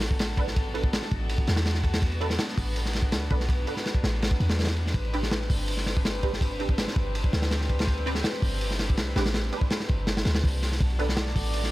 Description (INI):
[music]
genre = drum and bass, jungle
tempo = 164 BPM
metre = 4/4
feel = straight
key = B phrygian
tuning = A4 = 442 Hz
[part]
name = rich chamber string section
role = sustained chords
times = 0.0-11.7 s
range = B3 to B4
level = -35 LUFS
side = left 1 dB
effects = vintage 12-bit sampler grit
[part]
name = warm 808-style bass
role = bass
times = 0.0-11.7 s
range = G1 to E2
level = -28 LUFS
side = equal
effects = none
[part]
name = crunchy breakbeat drum kit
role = drums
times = 0.0-11.7 s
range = hi-hat, kick drum, ride cymbal, snare drum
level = -26 LUFS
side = equal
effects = none
[part]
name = filtered dub chord stab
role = stabs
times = 0.4-11.1 s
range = C4 to B4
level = -35 LUFS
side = right 3 dB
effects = ensemble chorus, dub echo
[part]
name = drifting glass-harmonics texture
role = texture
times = 11.1-11.7 s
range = D5 to D6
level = -38 LUFS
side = right 4 dB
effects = chorus, built-in reverb
[sound]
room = studio ambience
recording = vinyl crackle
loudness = -24 LUFS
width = side -17 dB against mid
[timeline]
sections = 0.0-11.7 A section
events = none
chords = 0.0 Bm7; 5.0 Am11; 10.8 Bm7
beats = 0.20 | 0.56 0.93 1.29 1.66 | 2.02 2.39 2.76 3.12 | 3.49 3.85 4.22 4.59 | 4.95 5.32 5.68 6.05 | 6.42 6.78 7.15 7.51 | 7.88 8.24 8.61 8.98 | 9.34 9.71 10.07 10.44 | 10.81 11.17 11.54